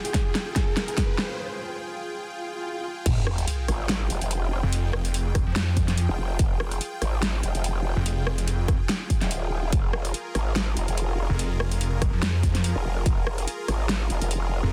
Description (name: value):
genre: heavy wobble dubstep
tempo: 144 BPM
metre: 4/4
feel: swing 55% on 16ths, half-time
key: F minor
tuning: A4 = 440 Hz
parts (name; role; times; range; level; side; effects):
- dark grand piano; melody; 0.0-1.2 s; Ab4; -38 LUFS; equal; delay
- supersaw pad; sustained chords; 0.0-14.7 s; F4 to G5; -38 LUFS; equal; sidechain pumping
- dubstep drum kit; drums; 0.0-14.4 s; crash cymbal, hi-hat, rim click, snare drum; -32 LUFS; equal; none
- riser, swell and sub drop; sound effects; 0.0-4.7 s; none; -35 LUFS; equal; none
- electronic kick drum; drums; 0.1-13.2 s; none; -26 LUFS; equal; none
- growl bass; bass; 3.1-14.6 s; Eb1 to Ab1; -29 LUFS; equal; chorus, overdrive
- snarling distorted saw bass; bass; 4.6-8.8, 11.3-14.7 s; F1 to F2; -26 LUFS; equal; overdrive
room: little or no reverb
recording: dense, heavily limited modern master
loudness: -26 LUFS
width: mono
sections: 0.0-3.1 A section; 3.1-14.7 B section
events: build-up 0.0-3.1; drum fill 0.0-1.4; riser 0.0-1.4; break 1.4-3.1; swell 2.3-3.1; drop 3.1-14.7; impact 3.1-4.7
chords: 0.0 Fmadd9